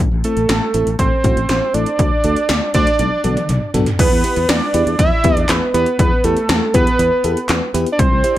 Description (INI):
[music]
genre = synth-pop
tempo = 120 BPM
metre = 4/4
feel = straight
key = E minor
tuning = A4 = 445 Hz
[part]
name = sustaining fretless electric bass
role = bass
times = 0.0-8.2 s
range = A1 to E2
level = -20 LUFS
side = equal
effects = ensemble chorus
[part]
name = fat analog lead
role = melody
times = 0.2-8.4 s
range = A4 to E5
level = -17 LUFS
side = right 2 dB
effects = plate reverb, digital delay
[part]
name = FM electric piano with auto-pan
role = accompaniment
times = 0.2-8.4 s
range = A3 to C5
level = -22 LUFS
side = left 1 dB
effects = plate reverb
[part]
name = 80s electronic pad drums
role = drums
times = 0.2-8.4 s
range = crash cymbal, handclaps, hi-hat, kick drum, snare drum, toms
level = -17 LUFS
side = equal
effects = gated reverb on snare and toms, gated reverb
[sound]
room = light reverb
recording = none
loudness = -13 LUFS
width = side -14 dB against mid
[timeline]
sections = 0.0-4.0 A section; 4.0-8.4 B section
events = drum fill 3.0-4.0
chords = 0.0 Am; 2.0 D; 3.0 Bm7; 4.0 Em